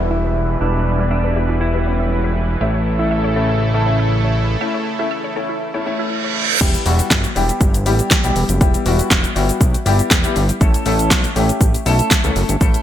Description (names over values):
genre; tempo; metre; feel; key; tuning
dance-pop; 120 BPM; 4/4; straight; E dorian; A4 = 441 Hz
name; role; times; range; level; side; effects
direct-recorded clean electric guitar; melody; 0.0-2.3 s; D4 to F#4; -25 LUFS; left 1 dB; analog chorus, low-pass filter
warm grand piano; accompaniment; 0.0-12.8 s; G3 to A4; -21 LUFS; left 3 dB; lush chorus, sidechain pumping, low-pass filter
supersaw pad; sustained chords; 0.0-6.6 s; B2 to B4; -23 LUFS; right 2 dB; sidechain pumping, low-pass filter
glassy wavetable pluck; arpeggios; 0.0-6.3 s; E4 to E5; -29 LUFS; right 1 dB; chorus, sidechain pumping, low-pass filter, ping-pong delay
fat analog bass; bass; 0.0-12.8 s; E1 to C#2; -18 LUFS; equal; sidechain pumping
downlifter and reverse cymbal; sound effects; 0.0-6.6 s; none; -23 LUFS; right 7 dB; none
house drum kit; drums; 6.6-12.8 s; crash cymbal, handclaps, hi-hat, kick drum, shaker, snare drum; -16 LUFS; equal; gated reverb
room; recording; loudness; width
light reverb; bright 1980s-style digital production; -14 LUFS; side -11 dB against mid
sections
0.0-6.6 A section; 6.6-12.8 B section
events
filter sweep 0.0-6.6; break 4.6-6.6; reverse cymbal 6.0-6.6; drop 6.6-12.8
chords
0.0 Em; 2.6 A; 6.6 Em; 10.6 A